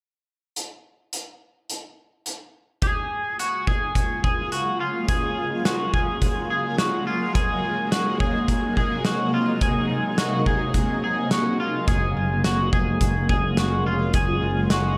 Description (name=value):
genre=dream pop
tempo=106 BPM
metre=4/4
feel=straight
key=Gb lydian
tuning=A4 = 439 Hz
part: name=loose indie drum kit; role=drums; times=0.6-14.8 s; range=hi-hat, kick drum, snare drum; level=-27 LUFS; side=equal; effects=none
part: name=shimmering ambient pad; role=sustained chords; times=3.6-15.0 s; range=C3 to F4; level=-28 LUFS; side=equal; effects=chorus, built-in reverb, phaser
part: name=electric guitar at the edge of break-up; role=arpeggios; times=2.8-15.0 s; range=F4 to Ab4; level=-28 LUFS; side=equal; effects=analog chorus, digital delay
part: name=modern bright picked electric bass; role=bass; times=11.9-15.0 s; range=F1 to Gb1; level=-27 LUFS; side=equal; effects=none
room=light reverb, small room ambience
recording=none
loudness=-23 LUFS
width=mono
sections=0.6-2.8 A section; 2.8-15.0 B section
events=none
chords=0.6 N.C.; 2.8 Gbmaj9; 7.4 Ab9; 11.9 Gbmaj9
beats=| 0.56 1.12 1.69 2.26 | 2.82 3.39 3.96 4.52 | 5.09 5.65 6.22 6.79 | 7.35 7.92 8.48 9.05 | 9.62 10.18 10.75 11.31 | 11.88 12.45 13.01 13.58 | 14.14 14.71